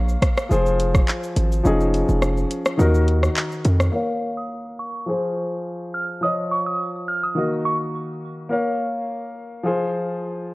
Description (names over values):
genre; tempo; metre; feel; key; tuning
dancehall; 105 BPM; 4/4; straight; Bb minor; A4 = 442 Hz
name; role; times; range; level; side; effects
warm grand piano; accompaniment; 0.0-10.5 s; Eb3 to F5; -23 LUFS; left 1 dB; sidechain pumping, low-pass filter
hard-hitting 808-style bass; bass; 0.0-3.9 s; F1 to F2; -19 LUFS; equal; none
afro-pop drum kit; drums; 0.1-3.9 s; handclaps, hi-hat, kick drum, rim click, shaker; -22 LUFS; equal; none
glassy synth bell; melody; 4.4-7.8 s; Db6 to F6; -25 LUFS; right 2 dB; chorus, low-pass filter, tape echo
room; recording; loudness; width
light reverb; worn, warbling old tape, cassette tape, warbly pitch drift; -19 LUFS; side -21 dB against mid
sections
0.0-3.9 A section; 3.9-10.5 B section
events
kick muted 1.7-3.9; filter sweep 3.9-10.5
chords
0.0 Bbm; 0.5 Fm; 1.7 Dbadd9/F; 2.8 Ebm; 3.9 Bbm; 5.1 Fm; 6.2 Dbadd9/F; 7.4 Ebm; 8.5 Bbm; 9.7 Fm